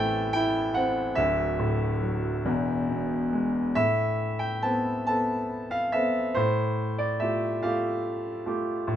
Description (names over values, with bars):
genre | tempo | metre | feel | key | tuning
classical, lyrical solo piano | 47 BPM (dotted quarters) | 6/8 | rubato | E minor, A minor from 3.8 s | A4 = 438 Hz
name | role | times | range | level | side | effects
bright concert grand piano | solo | 0.0-9.0 s | D1 to B5 | -24 LUFS | equal | none
room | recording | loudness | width
moderate studio reverb, RT60 0.5 s | dark, warm production | -24 LUFS | side -10 dB against mid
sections
0.0-3.8 A section; 3.8-9.0 B section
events
none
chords
0.0 Am; 1.2 Dadd9; 2.5 E; 3.8 Amadd9; 6.4 Fadd9/A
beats
| 1.18 2.46 | 3.77 5.08 | 6.37 7.63 | 8.88